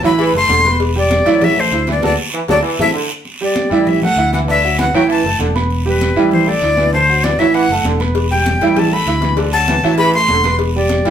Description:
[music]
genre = latin, salsa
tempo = 196 BPM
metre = 4/4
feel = straight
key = unclear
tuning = A4 = 440 Hz
[part]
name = breathy bright jazz flute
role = melody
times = 0.0-11.1 s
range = B4 to C6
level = -16 LUFS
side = left 2 dB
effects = none
[part]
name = bright trombone section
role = second line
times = 0.0-11.1 s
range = D3 to G3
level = -21 LUFS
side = equal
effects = none
[part]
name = clear grand piano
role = accompaniment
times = 0.0-11.1 s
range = D3 to E6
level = -17 LUFS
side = right 4 dB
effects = none
[part]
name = fingered electric bass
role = bass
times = 0.0-11.1 s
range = E1 to D2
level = -19 LUFS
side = left 1 dB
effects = none
[part]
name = congas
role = percussion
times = 0.0-11.1 s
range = none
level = -24 LUFS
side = left 2 dB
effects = none
[part]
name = guiro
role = percussion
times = 0.0-11.1 s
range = none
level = -27 LUFS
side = right 4 dB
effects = none
[part]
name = cowbell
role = percussion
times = 0.2-2.9, 8.1-11.1 s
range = none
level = -24 LUFS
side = left 8 dB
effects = none
[sound]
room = wet studio reverb, RT60 0.6 s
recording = band playing live in one room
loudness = -12 LUFS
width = side -9 dB against mid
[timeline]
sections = 0.0-3.3 A section; 3.3-11.1 A section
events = band accent 2.0-3.3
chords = 0.2 Am; 0.8 Em; 1.4 Am; 2.0 D; 2.6 Am; 3.3 Em; 3.9 A5; 4.5 D; 5.1 A5; 5.7 Em; 6.3 A5; 6.9 D; 7.5 A5; 8.2 Em; 8.8 A5; 9.4 D; 10.0 Am; 10.6 Em

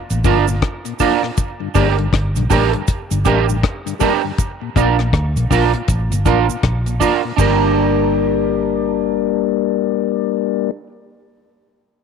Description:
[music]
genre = roots reggae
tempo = 80 BPM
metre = 4/4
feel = swing 61% on 16ths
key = G minor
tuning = A4 = 444 Hz
[part]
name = mellow tonewheel organ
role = accompaniment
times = 0.1-10.7 s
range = G2 to D4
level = -20 LUFS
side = left 12 dB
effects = slow rotary speaker
[part]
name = vintage muted fingered electric bass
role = bass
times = 0.1-10.7 s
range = G1 to D2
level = -18 LUFS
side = equal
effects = none
[part]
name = deep reggae drum kit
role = drums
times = 0.1-7.6 s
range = crash cymbal, hi-hat, kick drum, rim click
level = -20 LUFS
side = left 2 dB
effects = none
[part]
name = cabasa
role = percussion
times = 0.1-7.7 s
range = none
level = -30 LUFS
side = right 17 dB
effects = none
[part]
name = electric guitar at the edge of break-up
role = accompaniment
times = 0.2-10.9 s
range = D4 to Bb4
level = -19 LUFS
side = right 11 dB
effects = analog chorus, dub echo
[sound]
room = light reverb, small room ambience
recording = 1960s-style stereo with parts hard left and right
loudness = -15 LUFS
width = side -6 dB against mid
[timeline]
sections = 0.0-7.4 A section; 7.4-10.4 B section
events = none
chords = 0.0 Bb; 1.4 Gm; 4.4 Bb; 7.4 Gm

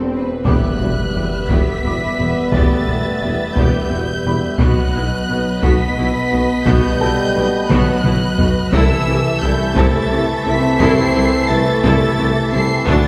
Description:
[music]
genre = cinematic, hybrid orchestral and electronic film score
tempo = 58 BPM (dotted quarters)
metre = 6/8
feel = straight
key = E minor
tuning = A4 = 440 Hz
[part]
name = clear symphonic violin section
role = second line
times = 0.0-13.1 s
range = A4 to A5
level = -27 LUFS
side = equal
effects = none
[part]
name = warm trombone section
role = sustained chords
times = 0.0-13.1 s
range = B2 to B3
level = -27 LUFS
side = equal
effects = none
[part]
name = mellow tuba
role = bass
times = 0.0-13.0 s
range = E1 to D2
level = -25 LUFS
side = equal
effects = none
[part]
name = rich symphonic cello section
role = bass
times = 0.0-12.9 s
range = D2 to C3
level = -26 LUFS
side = equal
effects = none
[part]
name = rich symphonic double bass section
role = bass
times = 0.0-13.0 s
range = E1 to D2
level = -25 LUFS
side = equal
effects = none
[part]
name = swell and impact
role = sound effects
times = 0.0-2.5 s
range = none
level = -28 LUFS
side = equal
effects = none
[part]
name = dark grand piano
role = texture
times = 0.0-13.1 s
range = A4 to D6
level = -33 LUFS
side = equal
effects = none
[part]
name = warm symphonic violin section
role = melody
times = 0.5-13.1 s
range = E6 to C7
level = -27 LUFS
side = equal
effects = none
[part]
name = rich symphonic viola section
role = accompaniment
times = 0.5-13.1 s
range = B3 to A4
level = -27 LUFS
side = equal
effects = none
[part]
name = mellow French horn section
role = sustained chords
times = 0.5-13.1 s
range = E3 to C4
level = -24 LUFS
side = equal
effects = none
[part]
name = taiko ensemble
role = drums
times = 0.5-13.1 s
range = none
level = -22 LUFS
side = equal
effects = none
[sound]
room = wet scoring stage reverb, RT60 1.4 s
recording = heard from further back in the room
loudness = -16 LUFS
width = mono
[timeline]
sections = 0.5-13.1 A section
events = swell 0.0-0.5; impact 0.5-2.5; drum fill 7.7-8.7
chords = 0.5 Emadd9; 4.6 B; 8.7 Am/C

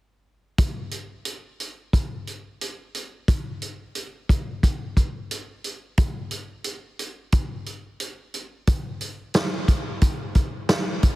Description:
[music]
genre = dream pop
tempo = 89 BPM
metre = 4/4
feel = straight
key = none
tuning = none
[part]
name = vintage drum kit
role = drums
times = 0.6-11.2 s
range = hi-hat, kick drum, snare drum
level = -22 LUFS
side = equal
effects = none
[sound]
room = light reverb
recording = heavily compressed radio sound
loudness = -24 LUFS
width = side -18 dB against mid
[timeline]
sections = 0.6-11.2 A section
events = none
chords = none

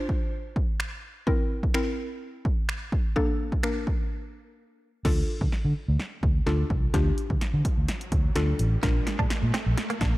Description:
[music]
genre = dance-pop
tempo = 127 BPM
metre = 4/4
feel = straight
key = D minor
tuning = A4 = 440 Hz
[part]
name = mallet-like synth pluck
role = accompaniment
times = 0.0-9.6 s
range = Bb3 to C5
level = -31 LUFS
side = left 2 dB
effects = chorus, sidechain pumping
[part]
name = punchy analog drum machine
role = drums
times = 0.1-10.1 s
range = crash cymbal, finger snaps, hi-hat, kick drum, snare drum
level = -26 LUFS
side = equal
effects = none
[part]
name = vintage muted fingered electric bass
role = bass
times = 5.0-10.2 s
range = A1 to D3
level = -25 LUFS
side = equal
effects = sidechain pumping
[part]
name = riser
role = sound effects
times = 7.4-10.2 s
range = none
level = -38 LUFS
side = right 2 dB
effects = none
[part]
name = direct-recorded clean electric guitar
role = riff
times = 8.8-10.1 s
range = Bb3 to D4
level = -33 LUFS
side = right 3 dB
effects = wide subtle chorus
[sound]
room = light reverb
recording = dark, warm production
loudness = -24 LUFS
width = side -18 dB against mid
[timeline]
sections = 0.0-5.1 A section; 5.1-10.2 B section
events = break 4.1-5.1; build-up 5.1-10.2; drum fill 5.1-10.2; riser 7.4-10.2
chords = 0.0 Dm7; 1.3 C7; 3.2 Bbmaj7; 5.1 Dm; 8.8 Bb

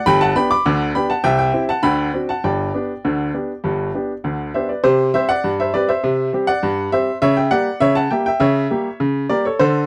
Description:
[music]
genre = ragtime piano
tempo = 101 BPM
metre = 2/4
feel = straight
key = G major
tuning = A4 = 441 Hz
[part]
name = bright upright piano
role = solo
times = 0.0-9.9 s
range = G1 to D6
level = -18 LUFS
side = equal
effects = none
[sound]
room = light reverb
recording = dry, close 1970s-style studio recording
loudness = -18 LUFS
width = mono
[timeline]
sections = 0.0-4.8 A section; 4.8-9.9 B section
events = none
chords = 0.1 G; 1.2 C; 1.8 D7; 2.4 G; 7.2 C#dim7

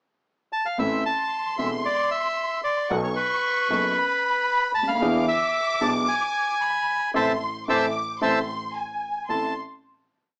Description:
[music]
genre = tango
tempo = 113 BPM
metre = 4/4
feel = rubato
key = A harmonic minor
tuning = A4 = 440 Hz
[part]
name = bandoneon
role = melody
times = 0.5-9.5 s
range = B4 to A5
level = -26 LUFS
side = equal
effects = none
[part]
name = warm studio violin section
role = second line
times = 0.8-9.5 s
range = G#5 to D6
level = -31 LUFS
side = equal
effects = none
[part]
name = warm grand piano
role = accompaniment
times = 0.8-9.5 s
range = E1 to A4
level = -29 LUFS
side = equal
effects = none
[part]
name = dark double bass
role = bass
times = 0.8-9.5 s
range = E1 to E2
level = -37 LUFS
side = equal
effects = none
[sound]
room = wet studio reverb, RT60 0.5 s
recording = small speaker sound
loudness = -24 LUFS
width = mono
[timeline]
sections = 0.0-0.8 pickup bar; 0.8-9.3 A section; 9.3-10.4 final chord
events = band accent 7.1-9.3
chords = 0.0 N.C.; 0.8 Am; 2.9 B7; 5.0 E7; 7.1 Am; 8.8 N.C.; 9.3 Am

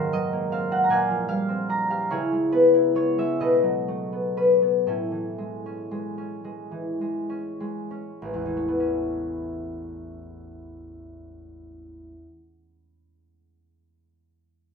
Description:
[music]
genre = classical, solo harp piece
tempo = 32-52 BPM (dotted quarters)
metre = 6/8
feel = rubato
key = A major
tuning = A4 = 440 Hz
[part]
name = concert harp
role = solo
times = 0.0-12.5 s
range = A1 to A#5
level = -23 LUFS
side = left 1 dB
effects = none
[sound]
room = light reverb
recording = minimal, uncompressed stereo recording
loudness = -22 LUFS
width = side -5 dB against mid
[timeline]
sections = 0.0-8.2 A section; 8.2-11.8 B section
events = slowing down 0.9-8.2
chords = 0.0 G#13; 0.9 Bb13; 2.1 C#m7; 3.4 B9; 4.9 Amaj7; 8.2 Aadd9

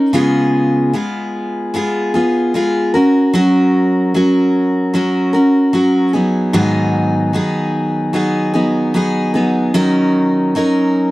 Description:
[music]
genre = pop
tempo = 75 BPM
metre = 4/4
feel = swing 60% on 16ths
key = unclear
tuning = A4 = 440 Hz
[part]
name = picked steel-string acoustic guitar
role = solo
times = 0.0-11.1 s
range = Ab2 to Bb4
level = -12 LUFS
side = equal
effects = none
[sound]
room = small room ambience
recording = dry, close 1970s-style studio recording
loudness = -12 LUFS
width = side -18 dB against mid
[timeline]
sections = 0.0-11.1 A section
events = none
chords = 0.1 Db7; 2.9 Gb; 6.1 Abm7; 9.8 Ebm7

